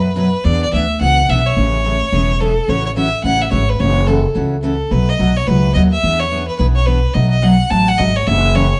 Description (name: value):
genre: country, western swing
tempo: 215 BPM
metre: 4/4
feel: swing 62% on 8ths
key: A major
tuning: A4 = 440 Hz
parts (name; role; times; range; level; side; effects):
- clear fiddle; melody; 0.0-8.8 s; A4 to A5; -20 LUFS; equal; none
- picked steel-string acoustic guitar; accompaniment; 0.0-8.7 s; B2 to G#4; -21 LUFS; equal; none
- upright bass; bass; 0.0-8.7 s; E1 to F#2; -18 LUFS; equal; none
room: moderate stone room reverb, RT60 1.0 s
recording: band playing live in one room, nothing above 10.5 kHz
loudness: -15 LUFS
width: mono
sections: 0.0-8.8 A section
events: none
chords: 0.4 E7; 1.6 Amaj7; 2.7 A6; 3.8 F#m7; 4.9 B7; 6.0 E7; 7.2 B7; 8.3 F#m7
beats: 0.16 | 0.44 0.72 1.00 1.28 | 1.56 1.84 2.12 2.40 | 2.68 2.96 3.24 3.52 | 3.80 4.08 4.36 4.63 | 4.92 5.19 5.47 5.75 | 6.03 6.31 6.59 6.87 | 7.15 7.43 7.71 7.99 | 8.27 8.55